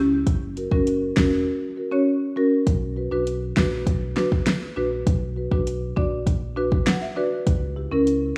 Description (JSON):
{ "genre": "dancehall", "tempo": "100 BPM", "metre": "4/4", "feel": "straight", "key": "B harmonic minor", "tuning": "A4 = 441 Hz", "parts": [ { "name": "marimba with medium mallets", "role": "accompaniment", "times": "0.0-8.0 s", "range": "C#4 to F#5", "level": "-25 LUFS", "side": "equal", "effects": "sidechain pumping" }, { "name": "sub bass with octave", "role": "bass", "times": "0.0-8.3 s", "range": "E1 to C#2", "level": "-32 LUFS", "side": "equal", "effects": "none" }, { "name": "deep house drum kit", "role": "drums", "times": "0.3-8.2 s", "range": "hi-hat, kick drum, snare drum", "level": "-24 LUFS", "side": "equal", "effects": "none" } ], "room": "light reverb, digital ambience", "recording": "rough home demo mix, studio reverb", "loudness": "-23 LUFS", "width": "mono", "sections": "0.0-2.7 A section; 2.7-8.4 B section", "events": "marimba fill 6.6-7.5", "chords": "0.3 F#; 2.7 Bm; 7.5 C#m", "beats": "| 0.27 0.87 1.47 2.07 | 2.67 3.27 3.87 4.47 | 5.07 5.67 6.27 6.87 | 7.47 8.07" }